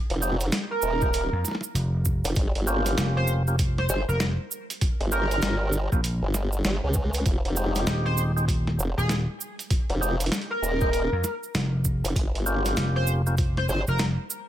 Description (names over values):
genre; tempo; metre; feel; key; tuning
glitch hop; 98 BPM; 4/4; swing 62% on 16ths; F minor; A4 = 440 Hz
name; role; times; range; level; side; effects
formant-sweep wobble bass; bass; 0.1-13.8 s; Eb1 to Db2; -26 LUFS; equal; chorus, tube saturation
boom bap sampler-style drum kit; drums; 0.1-14.1 s; hi-hat, snare drum; -30 LUFS; equal; studio reverb
percussive tonewheel organ; stabs; 0.2-13.4 s; Ab3 to G4; -31 LUFS; equal; slow rotary speaker, sidechain pumping, tape echo
cabasa; percussion; 0.2-14.5 s; none; -33 LUFS; right 6 dB; none
sync lead; melody; 0.7-14.0 s; Ab4 to C5; -30 LUFS; right 1 dB; lush chorus, tape echo
electronic kick drum; drums; 1.0-13.5 s; none; -26 LUFS; equal; studio reverb
vintage slap bass; bass; 1.3-14.2 s; Eb1 to F2; -25 LUFS; equal; none
room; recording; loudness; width
digital ambience; none; -23 LUFS; side -12 dB against mid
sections
0.0-14.5 A section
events
none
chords
0.0 Fm9; 2.4 Gm7b5; 7.3 Fm9; 12.2 Gm7b5